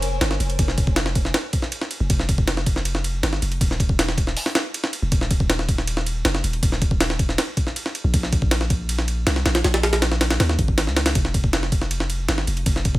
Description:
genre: drum and bass, jungle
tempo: 159 BPM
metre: 4/4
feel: straight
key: F minor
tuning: A4 = 440 Hz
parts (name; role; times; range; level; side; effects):
- long sustained 808-style bass; bass; 0.0-13.0 s; Eb1 to Eb2; -23 LUFS; equal; none
- jungle sampler-style drum kit; drums; 0.0-13.0 s; hi-hat, kick drum, ride cymbal, snare drum; -20 LUFS; equal; studio reverb
room: little or no reverb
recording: none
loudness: -19 LUFS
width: side -18 dB against mid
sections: 0.0-13.0 A section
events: none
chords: none

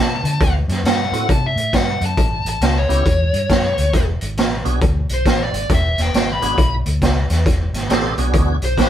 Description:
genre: electric blues shuffle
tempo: 136 BPM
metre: 4/4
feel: swing 63% on 8ths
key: unclear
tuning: A4 = 438 Hz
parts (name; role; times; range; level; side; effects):
- dark smooth lead guitar; melody; 0.0-8.9 s; C5 to B5; -21 LUFS; left 2 dB; overdrive
- vintage muted fingered electric bass; bass; 0.0-8.9 s; E1 to D3; -20 LUFS; equal; none
- raw garage drum kit; drums; 0.2-8.9 s; hi-hat, kick drum, snare drum; -18 LUFS; right 1 dB; none
- tonewheel organ; accompaniment; 1.1-8.9 s; A3 to B4; -23 LUFS; right 3 dB; slow rotary speaker, overdrive, chorus vibrato
room: light reverb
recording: band playing live in one room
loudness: -15 LUFS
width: side -10 dB against mid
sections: 0.0-8.9 A section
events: none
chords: 0.0 D7; 2.2 A7; 3.9 E7

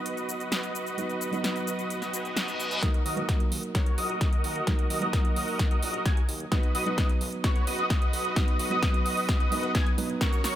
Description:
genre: EDM, festival progressive house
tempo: 130 BPM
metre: 4/4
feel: straight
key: B major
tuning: A4 = 441 Hz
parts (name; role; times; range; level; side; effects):
- felt-muted upright piano; accompaniment; 0.0-10.6 s; F#3 to B4; -34 LUFS; right 3 dB; sidechain pumping, tape echo
- dense compressed supersaw; riff; 0.0-10.5 s; F#4 to G#5; -33 LUFS; right 1 dB; sidechain pumping, low-pass filter, tape echo
- big-room dance drum kit; drums; 0.1-10.5 s; hi-hat, shaker, snare drum; -34 LUFS; equal; none
- reverse cymbal and riser; sound effects; 2.1-2.8, 10.2-10.6 s; none; -35 LUFS; left 2 dB; none
- wide unison lead; arpeggios; 2.8-10.5 s; C#6 to G#6; -33 LUFS; equal; ensemble chorus, sidechain pumping, tape echo
- fat analog bass; bass; 2.8-10.6 s; D#1 to D#2; -42 LUFS; left 1 dB; none
- electronic kick drum; drums; 2.8-10.3 s; none; -25 LUFS; left 1 dB; none
room: light reverb, digital ambience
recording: none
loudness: -25 LUFS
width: side -12 dB against mid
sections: 0.0-2.8 A section; 2.8-10.6 B section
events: reverse cymbal 2.1-2.8; build-up 2.8-10.6; drum fill 2.8-10.6; filter sweep on supersaw synth 2.8-10.6; filter sweep on analog synth lead 2.8-10.6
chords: 0.0 B; 2.8 D#m; 6.5 B

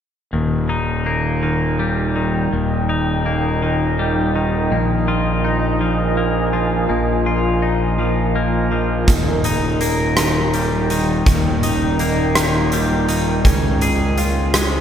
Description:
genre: post-rock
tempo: 55 BPM (dotted quarters)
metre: 6/8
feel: straight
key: Eb major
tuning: A4 = 439 Hz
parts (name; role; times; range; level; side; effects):
- deep dark ambient pad; sustained chords; 1.9-14.8 s; Eb4 to Ab5; -23 LUFS; right 2 dB; chorus, built-in reverb
- twelve-string electric guitar; arpeggios; 0.3-14.8 s; Eb2 to Ab4; -20 LUFS; left 2 dB; none
- fuzz fingered electric bass; bass; 0.3-14.8 s; Eb1 to Db2; -20 LUFS; equal; overdrive
- huge arena drum kit; drums; 9.1-14.7 s; hi-hat, kick drum, rim click; -20 LUFS; right 1 dB; none
room: wet cathedral reverb, RT60 4.5 s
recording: recorded in a church or concert hall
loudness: -16 LUFS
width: side -8 dB against mid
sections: 0.3-14.8 A section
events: none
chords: 0.3 Ebmaj7; 4.7 Bb7sus4; 9.1 Ebmaj7; 13.5 Dbmaj7

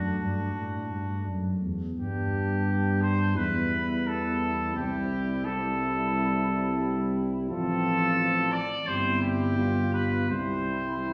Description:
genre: classical, brass quintet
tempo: 86 BPM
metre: 4/4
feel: rubato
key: C major from 7.5 s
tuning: A4 = 440 Hz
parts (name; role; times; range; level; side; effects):
- bright trumpet; melody; 0.0-11.1 s; F#4 to D5; -32 LUFS; equal; none
- mellow flugelhorn; second line; 0.0-11.1 s; D4 to F4; -38 LUFS; equal; none
- mellow French horn; accompaniment; 0.0-11.1 s; B3 to D4; -36 LUFS; equal; none
- mellow euphonium; accompaniment; 0.0-11.1 s; E3 to A3; -36 LUFS; equal; none
- mellow tuba; bass; 0.0-11.1 s; G1 to A2; -33 LUFS; equal; none
room: wet recital hall reverb, RT60 1.5 s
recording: heard from further back in the room, small room ambience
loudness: -28 LUFS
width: mono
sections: 0.0-11.1 A section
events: none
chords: 0.0 D; 2.0 G; 3.4 Em; 4.8 C6; 7.5 F/A; 8.9 C/G; 9.6 G7; 10.3 C

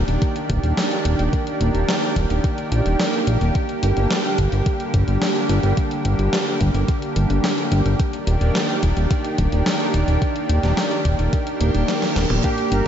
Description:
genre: synthwave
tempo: 108 BPM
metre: 4/4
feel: straight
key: unclear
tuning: A4 = 435 Hz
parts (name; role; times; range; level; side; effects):
- lush unison pad; sustained chords; 0.0-12.9 s; D3 to G4; -22 LUFS; right 1 dB; chorus, sidechain pumping
- fat analog bass; bass; 0.0-12.8 s; Eb1 to Bb1; -19 LUFS; equal; none
- gated 80s digital drum machine; drums; 0.1-12.8 s; hi-hat, snare drum, toms; -26 LUFS; equal; gated reverb, gated reverb snare, overdrive
- electronic kick drum; drums; 0.2-12.6 s; none; -23 LUFS; equal; overdrive
- reverse cymbal; sound effects; 11.5-12.4 s; none; -32 LUFS; right 4 dB; none
- soft supersaw; melody; 12.4-12.9 s; G4 to Bb4; -23 LUFS; equal; none
- bright electric grand piano; stabs; 12.4-12.8 s; Bb3 to G4; -23 LUFS; right 3 dB; none
room: moderate lush hall reverb, RT60 2.7 s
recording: dreamy mix soaked in reverb, nothing above 7.8 kHz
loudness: -18 LUFS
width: side -9 dB against mid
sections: 0.0-12.9 A section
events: reverse cymbal 11.5-12.4; drum fill 11.9-12.4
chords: 0.0 Ebmaj7; 3.6 Gm; 8.0 Ebmaj7

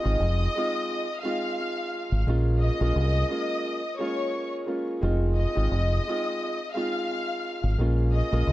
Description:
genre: hip hop, boom-bap hip-hop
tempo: 87 BPM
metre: 4/4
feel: swing 57% on 16ths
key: F minor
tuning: A4 = 440 Hz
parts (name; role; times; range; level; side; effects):
- warm studio violin section; melody; 0.0-8.5 s; Db5 to F6; -31 LUFS; left 1 dB; high-pass filter, low-pass filter, tape echo
- warm upright piano; accompaniment; 0.0-8.5 s; Ab3 to F4; -30 LUFS; right 1 dB; high-pass filter, low-pass filter, tape echo
- deep dub fingered electric bass; bass; 0.1-8.5 s; F1 to C2; -23 LUFS; equal; none
room: small room ambience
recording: echo-heavy mix, vinyl crackle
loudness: -24 LUFS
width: side -16 dB against mid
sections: 0.0-8.5 A section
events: none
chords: 0.0 Fm7; 2.3 Bbm7; 5.0 Fm7; 7.8 Bbm7

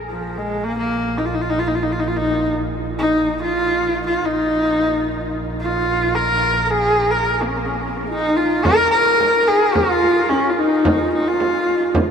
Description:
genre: mongolian traditional, Mongolian folk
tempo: 109 BPM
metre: 4/4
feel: straight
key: Bb yu mode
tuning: A4 = 440 Hz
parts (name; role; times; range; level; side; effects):
- rich double bass; drone; 0.0-8.7 s; Bb1; -28 LUFS; right 1 dB; none
- bright horsehead fiddle; melody; 0.1-12.1 s; F3 to Bb4; -17 LUFS; equal; none
- breathy mellow low xiao; second line; 8.1-12.0 s; Db4 to Db5; -20 LUFS; left 2 dB; none
- frame drum; percussion; 8.7-12.1 s; none; -23 LUFS; right 1 dB; none
room: wet huge ambient reverb, RT60 8.2 s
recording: heard from further back in the room, lossy compression artefacts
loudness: -16 LUFS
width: side -7 dB against mid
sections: 0.0-8.6 A section; 8.6-12.1 B section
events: none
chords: none

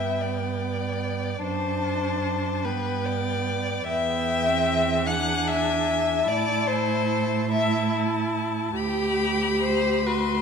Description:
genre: classical, slow romantic movement for string quartet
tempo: 49 BPM (dotted quarters)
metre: 6/8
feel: uneven beats, rubato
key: G major from 3.9 s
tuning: A4 = 440 Hz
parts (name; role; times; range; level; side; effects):
- warm violin; melody; 0.0-10.4 s; G5 to C6; -31 LUFS; left 9 dB; none
- warm violin; second line; 0.0-10.4 s; G4 to F#5; -26 LUFS; left 3 dB; none
- warm viola; accompaniment; 0.0-10.4 s; B3 to G4; -29 LUFS; right 3 dB; none
- rich cello; bass; 0.0-10.4 s; D2 to A2; -28 LUFS; right 4 dB; none
room: moderate scoring stage reverb, RT60 1.6 s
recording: none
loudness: -22 LUFS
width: side -6 dB against mid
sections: 0.0-10.4 A section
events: none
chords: 0.0 G; 1.4 D/F#; 2.6 G; 3.9 Em; 5.1 E7; 6.3 Am; 8.8 G/D

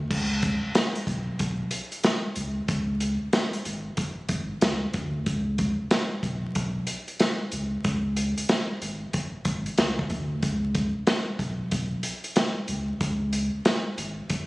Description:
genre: hip hop, boom-bap hip-hop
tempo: 93 BPM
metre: 4/4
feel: swing 63% on 16ths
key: unclear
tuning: A4 = 440 Hz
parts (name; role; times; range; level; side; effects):
- warm sub bass; bass; 0.0-14.2 s; G#1 to D2; -28 LUFS; equal; none
- vintage drum kit; drums; 0.1-14.5 s; crash cymbal, hi-hat, kick drum, snare drum; -26 LUFS; equal; vintage 12-bit sampler grit
room: light reverb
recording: recorded on a phone in the room, studio reverb, vinyl crackle, compression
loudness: -25 LUFS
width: side -21 dB against mid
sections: 0.1-14.5 A section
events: none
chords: none

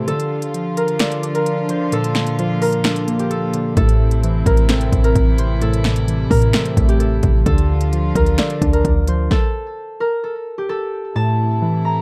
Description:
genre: hip hop, trap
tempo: 130 BPM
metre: 4/4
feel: half-time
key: A phrygian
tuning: A4 = 440 Hz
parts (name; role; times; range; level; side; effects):
- concert harp; melody; 0.0-12.0 s; G4 to Bb5; -25 LUFS; equal; delay
- warbly lo-fi synth keys; accompaniment; 0.0-12.0 s; A2 to D5; -23 LUFS; equal; chorus
- warm chamber string section; sustained chords; 0.0-12.0 s; C3 to F4; -28 LUFS; equal; none
- deep house drum kit; drums; 0.1-9.4 s; finger snaps, hi-hat, kick drum, snare drum; -21 LUFS; equal; none
- clean 808-style bass; bass; 3.8-9.3 s; A1 to A2; -20 LUFS; equal; none
room: little or no reverb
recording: dark, warm production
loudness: -18 LUFS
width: mono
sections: 0.0-11.2 A section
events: break 0.0-3.8; stop 9.3-11.2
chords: 0.1 Dm; 1.9 Bb; 3.8 Am; 7.5 Dm; 9.3 N.C.; 11.2 Am

